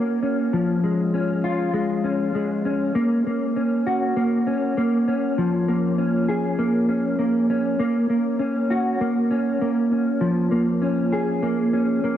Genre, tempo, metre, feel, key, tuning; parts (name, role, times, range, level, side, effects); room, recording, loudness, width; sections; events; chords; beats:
dream pop; 99 BPM; 4/4; straight; Db major; A4 = 441 Hz
mellow electric guitar; solo; 0.0-12.2 s; F3 to Ab4; -20 LUFS; equal; ensemble chorus, analog delay
moderate lush hall reverb, RT60 2.5 s; home recording on cassette; -20 LUFS; side -11 dB against mid
0.0-12.2 A section
0.0 Gb/Bb; 0.5 Db/F; 3.0 Gb/Bb; 5.4 Db6; 7.8 Gb/Bb; 10.2 Bbm7
| 0.53 1.13 1.74 2.34 | 2.95 3.56 4.16 4.77 | 5.38 5.98 6.59 7.19 | 7.80 8.40 9.01 9.62 | 10.22 10.83 11.44 12.04